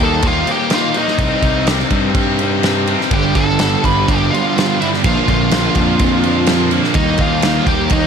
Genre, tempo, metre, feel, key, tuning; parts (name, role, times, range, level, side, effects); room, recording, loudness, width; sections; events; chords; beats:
quiet-loud alternative rock; 125 BPM; 4/4; straight; A4 = 440 Hz
bluesy overdriven lead guitar; melody; 0.0-8.1 s; Eb4 to B5; -19 LUFS; equal; distortion
distorted electric guitar; riff; 0.0-8.1 s; G2 to Eb4; -21 LUFS; left 14 dB; distortion
heavy high-gain guitar; riff; 0.0-8.1 s; G2 to Eb4; -22 LUFS; equal; distortion
fuzz picked electric bass; bass; 0.0-8.1 s; G1 to G2; -19 LUFS; equal; overdrive
loose indie drum kit; drums; 0.2-8.0 s; crash cymbal, kick drum, snare drum; -18 LUFS; right 1 dB
thick fuzz guitar; riff; 3.1-8.1 s; G2 to Eb4; -20 LUFS; right 13 dB; distortion
light reverb, small room ambience; -12 LUFS; side -7 dB against mid
0.0-8.1 A section
0.0 Eb; 1.2 Cm; 3.1 G; 5.0 Bb; 7.0 Eb
0.24 0.73 | 1.21 1.69 2.17 2.65 | 3.13 3.61 4.09 4.57 | 5.05 5.53 6.01 6.49 | 6.97 7.45 7.92